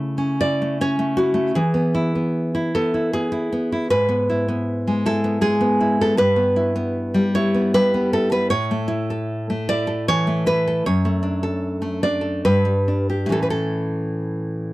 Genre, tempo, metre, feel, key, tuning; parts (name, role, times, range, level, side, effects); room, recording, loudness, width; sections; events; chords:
romantic piece for solo classical guitar; 63-80 BPM; 3/4; rubato; A4 = 440 Hz
nylon-string guitar; solo; 0.0-14.7 s; F#2 to E5; -18 LUFS; equal
light reverb; dry, close 1970s-style studio recording; -18 LUFS; side -18 dB against mid
0.0-14.7 A section
0.0 A/C#; 1.6 E; 3.9 E/G#; 6.2 Em/G; 8.5 A; 10.8 D/F#; 12.4 G; 13.3 A